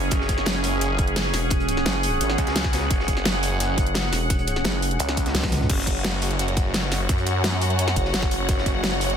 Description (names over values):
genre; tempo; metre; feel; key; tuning
dark technical drum and bass; 172 BPM; 4/4; straight; unclear; A4 = 440 Hz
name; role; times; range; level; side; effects
deep dark ambient pad; sustained chords; 0.0-9.2 s; C#4 to F#5; -27 LUFS; right 1 dB; chorus, built-in reverb, sidechain pumping
growling FM bass; bass; 0.0-5.7, 8.0-8.1 s; E1 to C#2; -26 LUFS; equal; none
snarling distorted saw bass; bass; 0.1-9.2 s; F#1 to F#2; -25 LUFS; equal; distortion, sidechain pumping
crunchy breakbeat drum kit; drums; 0.1-9.1 s; hi-hat, snare drum; -36 LUFS; equal; none
dubstep drum kit; drums; 0.1-9.2 s; crash cymbal, hi-hat, snare drum, toms; -26 LUFS; equal; none
electronic kick drum; drums; 0.1-8.7 s; none; -24 LUFS; equal; none
rich symphonic string section; texture; 5.7-9.2 s; F#4 to F#5; -28 LUFS; left 2 dB; sidechain pumping
room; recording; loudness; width
light reverb, studio reverb; dense, heavily limited modern master; -20 LUFS; side -8 dB against mid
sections
0.0-5.7 A section; 5.7-9.2 A section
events
drop 0.0-5.7, 5.7-9.2; drum fill 5.4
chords
0.0 F#5